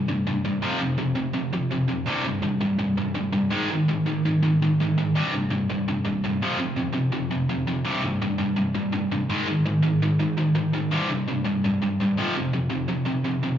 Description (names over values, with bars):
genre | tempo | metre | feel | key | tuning
punk | 166 BPM | 4/4 | straight | C minor | A4 = 440 Hz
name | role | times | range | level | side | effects
tight distorted guitar | solo | 0.0-13.6 s | C2 to Ab3 | -22 LUFS | equal | distortion, slapback echo
room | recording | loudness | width
moderate club reverb, RT60 0.8 s | live gig heard through the venue's PA, club reverb, nothing above 7.5 kHz | -22 LUFS | side -10 dB against mid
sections
0.0-13.6 A section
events
none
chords
0.0 C5; 0.6 F5; 2.1 C5; 3.5 Ab5; 5.1 C5; 6.4 F5; 7.8 C5; 9.3 Ab5; 10.9 C5; 12.2 F5